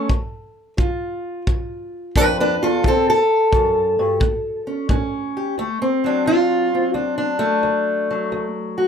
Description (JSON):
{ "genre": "acoustic country blues, solo or duo", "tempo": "88 BPM", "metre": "4/4", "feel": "swing 68% on 8ths", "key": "D mixolydian", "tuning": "A4 = 441 Hz", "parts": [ { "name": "fingerpicked steel-string acoustic guitar", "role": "melody", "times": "0.0-8.9 s", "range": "D2 to B4", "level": "-18 LUFS", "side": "equal", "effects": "none" }, { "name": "kick drum", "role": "drums", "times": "0.1-5.1 s", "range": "none", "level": "-21 LUFS", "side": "equal", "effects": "none" } ], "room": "wet booth ambience, RT60 0.2 s", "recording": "none", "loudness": "-17 LUFS", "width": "side -7 dB against mid", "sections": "0.0-5.6 A section; 5.6-8.9 B section", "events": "steel-string acoustic guitar solo 0.0-5.6", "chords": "0.1 G5; 2.8 D; 4.2 A; 5.6 D7" }